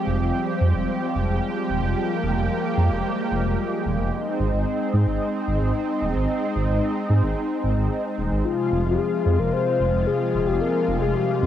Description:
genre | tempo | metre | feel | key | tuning
synthwave | 111 BPM | 4/4 | straight | F minor | A4 = 436 Hz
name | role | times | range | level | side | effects
analog string pad | sustained chords | 0.0-11.5 s | C3 to G4 | -24 LUFS | equal | ensemble chorus
dark detuned saw bass | bass | 0.1-11.5 s | Eb1 to Ab2 | -23 LUFS | right 1 dB | none
soft octave-layered synth lead | melody | 8.4-11.5 s | F4 to C5 | -23 LUFS | left 6 dB | chorus, cassette tape, tape echo
room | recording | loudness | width
moderate spring reverb, RT60 1.7 s, digital ambience | home recording on cassette | -20 LUFS | side -10 dB against mid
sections
0.0-11.5 A section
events
none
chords
0.0 Fmadd9; 4.1 Ab; 8.4 Fm

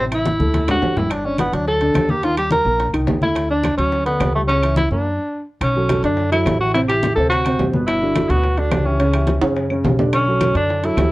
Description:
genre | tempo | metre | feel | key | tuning
Afro-Cuban jazz | 213 BPM | 4/4 | straight | D major, B minor from 5.6 s | A4 = 440 Hz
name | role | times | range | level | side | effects
breathy tenor saxophone | melody | 0.0-11.1 s | A3 to Bb4 | -19 LUFS | equal | none
dark upright piano | accompaniment | 0.0-11.1 s | B2 to D5 | -22 LUFS | equal | none
upright bass | bass | 0.0-11.1 s | G1 to F#2 | -22 LUFS | equal | none
bongos | percussion | 0.1-11.1 s | none | -29 LUFS | left 2 dB | none
claves | percussion | 0.1-11.1 s | none | -34 LUFS | left 1 dB | none
congas | percussion | 0.1-11.1 s | none | -25 LUFS | left 1 dB | none
timbales | percussion | 0.1-11.1 s | none | -26 LUFS | right 3 dB | none
room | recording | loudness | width
moderate studio reverb, RT60 0.6 s | worn, warbling old tape, cassette tape, warbly pitch drift | -16 LUFS | side -18 dB against mid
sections
0.0-5.6 A section; 5.6-11.1 B section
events
drum fill 0.4-1.1, 9.4-10.1; stop 5.1-5.6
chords
0.0 Am; 0.5 D; 1.1 G5; 2.2 Eb; 3.4 D6; 4.5 C#m6; 5.1 D/F#; 5.6 Bm11; 6.7 Am7; 7.3 D6; 7.9 Gmaj7#11; 9.0 C#dim; 9.6 F#5; 10.1 Bm9

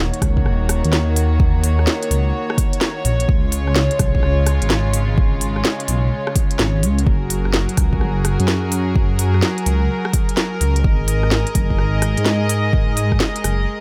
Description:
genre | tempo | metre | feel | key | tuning
future garage | 127 BPM | 4/4 | swing 64% on 16ths | Eb minor | A4 = 440 Hz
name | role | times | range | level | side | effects
warm studio string section | sustained chords | 0.0-13.8 s | Db3 to Eb5 | -26 LUFS | equal | sidechain pumping
dark detuned saw bass | bass | 0.0-13.7 s | Eb1 to Ab2 | -20 LUFS | equal | sidechain pumping
organic electronic drum kit | drums | 0.1-13.6 s | hi-hat, rim click, snare drum | -24 LUFS | equal | none
electronic kick drum | drums | 0.2-13.2 s | none | -20 LUFS | equal | none
room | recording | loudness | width
light reverb, digital ambience | none | -18 LUFS | mono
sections
0.0-13.8 A section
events
none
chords
0.0 Ebm7; 3.3 Db; 7.1 Gbadd9; 10.8 Absus2

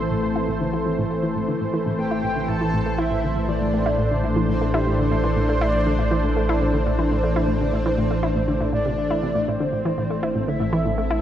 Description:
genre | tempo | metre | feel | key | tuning
ambient | 120 BPM | 4/4 | straight | A minor | A4 = 440 Hz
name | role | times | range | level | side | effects
lush unison pad | sustained chords | 0.0-11.2 s | E3 to C5 | -24 LUFS | left 1 dB | chorus
analog drone | bass | 0.0-11.2 s | A1 | -26 LUFS | equal | chorus
analog pluck | riff | 0.1-11.2 s | A2 to E4 | -26 LUFS | equal | chorus, analog delay
breathy flute-like synth lead | melody | 2.0-11.2 s | G4 to A5 | -27 LUFS | right 1 dB | ensemble chorus, analog delay
room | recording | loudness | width
wet plate reverb, RT60 2.6 s | dreamy mix soaked in reverb, cassette tape | -20 LUFS | side -10 dB against mid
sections
0.0-9.5 A section; 9.5-11.2 B section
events
fade-in on synth drone 0.0-9.5; filter sweep on synth arpeggio sound 0.0-9.5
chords
0.0 Am

